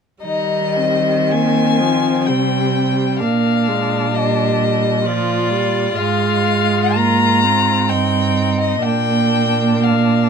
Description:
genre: classical, slow romantic movement for string quartet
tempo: 54-68 BPM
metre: 3/4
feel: rubato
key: Eb major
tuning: A4 = 440 Hz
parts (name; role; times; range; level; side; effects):
- rich violin; melody; 0.2-10.3 s; D5 to Bb5; -19 LUFS; left 6 dB; none
- rich violin; second line; 0.2-10.3 s; C4 to F4; -22 LUFS; left 5 dB; none
- rich viola; accompaniment; 0.2-10.3 s; F3 to C4; -20 LUFS; right 4 dB; none
- warm cello; bass; 0.2-10.3 s; G2 to Eb3; -20 LUFS; right 6 dB; none
room: light reverb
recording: close, detailed microphones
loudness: -14 LUFS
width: side -6 dB against mid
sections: 0.2-10.3 A section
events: none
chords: 0.2 Eb; 3.2 Bb; 6.0 Bb5/Ab; 7.9 Eb/G; 8.8 Bb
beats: | 0.24 1.31 2.27 | 3.20 4.15 5.05 | 5.96 6.95 7.89 | 8.85 9.84

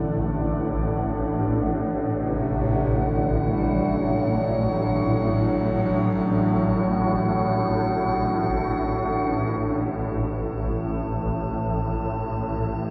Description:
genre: dark ambient drone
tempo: free time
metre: none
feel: none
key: unclear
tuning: A4 = 444 Hz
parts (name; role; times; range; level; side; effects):
- mellow bass clarinet; melody; 0.0-8.7 s; C3 to G3; -31 LUFS; equal; delay
- deep dark ambient pad; sustained chords; 0.0-9.6 s; D4 to F#5; -32 LUFS; equal; chorus, built-in reverb
- swarming drone; drone; 0.0-12.9 s; A1 to A2; -26 LUFS; equal; built-in reverb
- metallic inharmonic drone; texture; 2.6-12.9 s; F#4 to A4; -33 LUFS; equal; chorus, built-in reverb
room: wet cathedral reverb, RT60 6.2 s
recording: in a vast, echoing space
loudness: -24 LUFS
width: mono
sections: 0.0-9.6 A section; 9.6-12.9 B section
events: fade-in on ambient pad 0.0-9.6; fade-in on bass clarinet 0.0-9.6; filter sweep on synth drone 0.0-9.6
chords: 0.0 D; 9.6 N.C.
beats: free time

